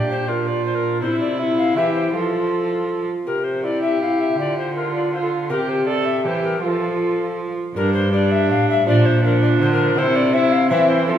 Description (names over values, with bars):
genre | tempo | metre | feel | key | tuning
classical, renaissance-style consort dance | 161 BPM | 3/4 | straight | unclear | A4 = 441 Hz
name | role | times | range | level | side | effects
alto recorder | melody | 0.0-11.2 s | A4 to F5 | -23 LUFS | left 4 dB | none
warm viola | second line | 0.0-11.2 s | D4 to A4 | -23 LUFS | right 4 dB | none
mellow bassoon | accompaniment | 0.0-11.2 s | F3 to G4 | -23 LUFS | left 2 dB | none
rich cello | bass | 0.0-11.2 s | G2 to F3 | -22 LUFS | right 1 dB | none
room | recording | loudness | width
wet recital hall reverb, RT60 1.7 s | heard from further back in the room | -17 LUFS | side -10 dB against mid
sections
0.0-7.7 A section; 7.7-11.2 A section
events
none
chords
0.0 Bb; 1.0 C; 2.1 F; 3.3 C; 4.4 Dm; 5.5 C; 6.6 F; 7.7 G5; 8.9 Bb; 10.0 C